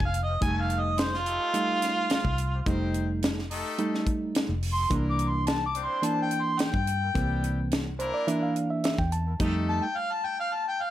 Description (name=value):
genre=straight-eighth soul blues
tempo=107 BPM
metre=4/4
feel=straight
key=F mixolydian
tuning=A4 = 440 Hz
part: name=warm harmonica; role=second line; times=0.0-10.9 s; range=F4 to D6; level=-28 LUFS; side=equal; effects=overdrive, slapback echo, plate reverb
part: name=bright reed electric piano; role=accompaniment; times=0.0-9.9 s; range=E3 to A5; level=-30 LUFS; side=right 2 dB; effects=plate reverb
part: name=vintage muted fingered electric bass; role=bass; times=0.0-9.8 s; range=F1 to G2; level=-29 LUFS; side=equal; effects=none
part: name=tight funk drum kit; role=drums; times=0.0-9.5 s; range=crash cymbal, hi-hat, kick drum, snare drum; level=-30 LUFS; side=equal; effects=none
part: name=brilliant horn section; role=sustained chords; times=0.3-9.8 s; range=G3 to C5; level=-37 LUFS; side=left 4 dB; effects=plate reverb
room=light reverb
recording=none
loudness=-25 LUFS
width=side -13 dB against mid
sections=0.0-10.9 A section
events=harmonica solo 0.0-10.9; reed electric piano fill 7.7-9.4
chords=0.0 F9; 4.9 C9; 9.4 F9